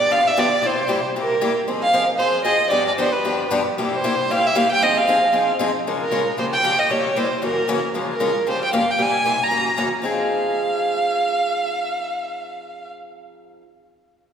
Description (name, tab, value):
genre	jazz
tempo	230 BPM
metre	4/4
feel	swing 57% on 8ths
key	F minor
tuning	A4 = 439 Hz
part	warm violin	melody	0.0-12.9 s	Bb4 to Bb5	-19 LUFS	right 1 dB	none
part	picked steel-string acoustic guitar	accompaniment	0.1-13.6 s	Gb2 to Bb4	-23 LUFS	left 2 dB	none
room	wet concert hall reverb, RT60 2.6 s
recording	recorded in a church or concert hall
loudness	-17 LUFS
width	side -8 dB against mid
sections	0.0-5.9 A section; 5.9-10.0 B section; 10.0-12.1 C section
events	none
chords	0.0 G7; 0.6 C7; 1.7 Fm7; 2.7 G7; 3.8 C7; 4.8 Fm7; 5.9 Db6; 6.4 Gm7b5; 6.9 C7b9; 7.4 Gb7; 7.9 Db6; 8.5 Gm7b5; 9.0 C7b13; 9.5 Gb7; 10.0 Fm7